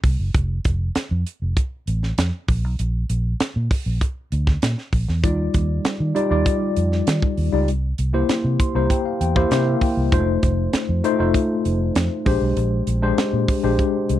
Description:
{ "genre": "polished 1980s jazz-funk pop", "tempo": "98 BPM", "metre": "4/4", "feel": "straight", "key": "Eb major", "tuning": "A4 = 440 Hz", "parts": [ { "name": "vintage muted fingered electric bass", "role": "bass", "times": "0.0-14.2 s", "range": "F1 to Eb3", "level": "-21 LUFS", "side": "equal", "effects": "none" }, { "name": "tight funk drum kit", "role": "drums", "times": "0.0-14.2 s", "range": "hi-hat, kick drum, snare drum", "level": "-21 LUFS", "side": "right 1 dB", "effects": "none" }, { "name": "tine electric piano", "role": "accompaniment", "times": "5.2-14.2 s", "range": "G3 to C6", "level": "-21 LUFS", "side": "left 2 dB", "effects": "medium stereo tremolo, wide subtle chorus" } ], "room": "little or no reverb", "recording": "dry, close 1970s-style studio recording", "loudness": "-18 LUFS", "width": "side -12 dB against mid", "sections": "0.0-14.2 A section", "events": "tine electric piano fill 8.3-10.1", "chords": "0.3 N.C.; 5.2 Ebmaj9; 7.7 C7; 10.1 F7; 12.3 Bb13" }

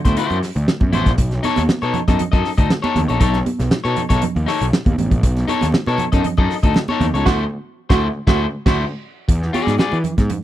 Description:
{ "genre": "funk", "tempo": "118 BPM", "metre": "4/4", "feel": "straight", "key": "B mixolydian", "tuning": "A4 = 440 Hz", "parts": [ { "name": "electric guitar at the edge of break-up", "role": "accompaniment", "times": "0.0-10.0 s", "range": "D#4 to D#5", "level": "-21 LUFS", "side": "left 5 dB", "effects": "none" }, { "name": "fuzz picked electric bass", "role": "bass", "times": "0.1-10.3 s", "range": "A1 to E3", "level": "-20 LUFS", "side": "equal", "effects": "overdrive" }, { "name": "warm soul drum kit", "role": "drums", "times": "0.1-10.4 s", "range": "crash cymbal, hi-hat, kick drum, snare drum", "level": "-18 LUFS", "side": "equal", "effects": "none" }, { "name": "congas", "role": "percussion", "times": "0.1-10.4 s", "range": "none", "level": "-24 LUFS", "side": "right 5 dB", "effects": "none" }, { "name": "growling tenor saxophone", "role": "second line", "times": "7.3-8.8 s", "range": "F#4", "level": "-24 LUFS", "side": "right 11 dB", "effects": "none" } ], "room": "little or no reverb", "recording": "none", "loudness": "-15 LUFS", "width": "side -13 dB against mid", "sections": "0.0-9.3 A section; 9.3-10.4 B section", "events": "band accent 7.3-9.3; break 8.8-9.3", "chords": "0.0 D9; 1.2 B9; 7.3 D9; 9.3 E9" }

